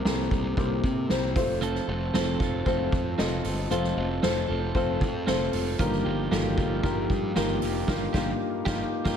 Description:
piano-driven pop; 115 BPM; 4/4; straight; A4 = 439 Hz
felt-muted upright piano; accompaniment; 0.0-9.2 s; G2 to Eb5; -28 LUFS; left 2 dB
fuzz picked electric bass; bass; 0.0-9.2 s; F1 to C3; -31 LUFS; equal; overdrive
soft-mallet drum kit; drums; 0.1-9.2 s; crash cymbal, hi-hat, kick drum, ride cymbal, snare drum; -30 LUFS; right 1 dB
clean electric guitar; riff; 1.6-9.2 s; G2 to A4; -32 LUFS; right 6 dB
moderate lush hall reverb, RT60 1.7 s, small room ambience; big arena sound; -24 LUFS; side -8 dB against mid
0.0-9.2 A section
band accent 7.9-9.2
0.0 C7; 1.4 F; 5.8 Ebadd9
0.06 0.58 1.10 | 1.62 2.14 2.66 3.19 | 3.71 4.23 4.75 5.27 | 5.79 6.32 6.84 7.36 | 7.88 8.40 8.92

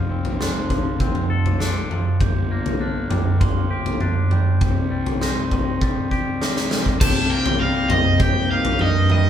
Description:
post-rock; 100 BPM; 4/4; straight; A4 = 440 Hz
glockenspiel with soft plastic mallets; arpeggios; 0.0-9.3 s; C6 to Bb6; -33 LUFS; right 6 dB
twangy electric guitar; arpeggios; 0.0-9.3 s; G2 to A4; -30 LUFS; left 2 dB
fuzz fingered electric bass; bass; 0.0-9.3 s; F1 to G2; -26 LUFS; left 2 dB; overdrive
huge arena drum kit; drums; 0.2-9.2 s; crash cymbal, kick drum, snare drum, toms; -19 LUFS; equal
cranked stack guitar; melody; 7.0-9.3 s; Eb5 to A5; -22 LUFS; equal; overdrive
deep dark ambient pad; sustained chords; 8.4-9.3 s; G3 to Bb4; -31 LUFS; right 5 dB; chorus, built-in reverb
moderate stone room reverb, RT60 0.9 s; band playing live in one room; -18 LUFS; side -9 dB against mid
0.0-7.0 A section; 7.0-9.3 B section
drum fill 5.8-7.0
0.0 F6; 2.2 Gm; 4.6 Cm; 7.0 Cm7
0.41 1.01 1.61 | 2.21 2.81 3.41 4.01 | 4.61 5.21 5.81 6.41 | 7.01 7.61 8.21 8.80

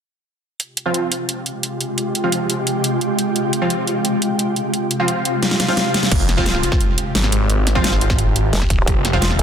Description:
dark technical drum and bass; 174 BPM; 4/4; straight; F minor; A4 = 440 Hz
swarming drone; sustained chords; 1.1-9.4 s; C3 to Bb4; -24 LUFS; left 1 dB; built-in reverb, sidechain pumping
dubstep drum kit; drums; 0.6-9.4 s; crash cymbal, hi-hat, snare drum; -21 LUFS; equal
ethereal airy pad; texture; 1.6-6.1 s; Ab3 to G5; -24 LUFS; right 1 dB; ensemble chorus, built-in reverb, sidechain pumping
orchestra-hit-like synth stab; stabs; 0.9-9.4 s; F3 to F4; -23 LUFS; right 1 dB; built-in reverb, phaser, ping-pong delay
swell and impact; sound effects; 5.5-7.5 s; -27 LUFS; equal
phased detuned saw bass; bass; 6.1-9.4 s; F1 to Ab1; -18 LUFS; equal; phaser, overdrive
electronic kick drum; drums; 6.1-9.2 s; -20 LUFS; equal
vowel-sweep wobble bass; bass; 8.5-9.4 s; F1; -19 LUFS; equal; chorus, tube saturation
moderate lush hall reverb, RT60 2.4 s; dense, heavily limited modern master; -16 LUFS; side -8 dB against mid
0.6-6.1 A section; 6.1-9.4 B section
drum fill 5.4-6.1; swell 5.5-6.1; drop 6.1-9.4; impact 6.1-7.5
0.6 Fmadd9
| 0.60 0.94 1.29 1.63 | 1.98 2.32 2.67 3.01 | 3.36 3.70 4.05 4.39 | 4.74 5.08 5.43 5.77 | 6.12 6.46 6.81 7.15 | 7.50 7.84 8.19 8.53 | 8.87 9.22

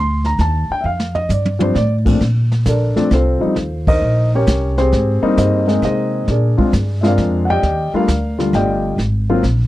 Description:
jazz piano trio; 133 BPM; 3/4; swing 68% on 8ths; Bb major; A4 = 440 Hz
dark baby grand piano; melody; 0.0-9.4 s; Bb2 to C6; -17 LUFS; left 1 dB
upright bass; bass; 0.0-9.7 s; G1 to C3; -17 LUFS; equal
vintage brush drum kit; drums; 0.2-9.7 s; brushed snare drum, crash cymbal, hi-hat, kick drum, snare drum, toms; -20 LUFS; equal
little or no reverb; dry, close 1970s-style studio recording; -14 LUFS; side -16 dB against mid
0.0-2.2 A section; 2.2-9.7 B section
drum fill 0.8-1.8; band accent 3.8
0.0 Bbmaj9; 3.6 Eb13; 4.9 Abmaj7; 6.3 Bb7; 7.6 Ebmaj9#11; 9.0 Absus2
0.39 | 0.84 1.30 1.75 | 2.20 2.65 3.11 | 3.56 4.01 4.46 | 4.92 5.37 5.82 | 6.27 6.72 7.17 | 7.63 8.08 8.53 | 8.98 9.43

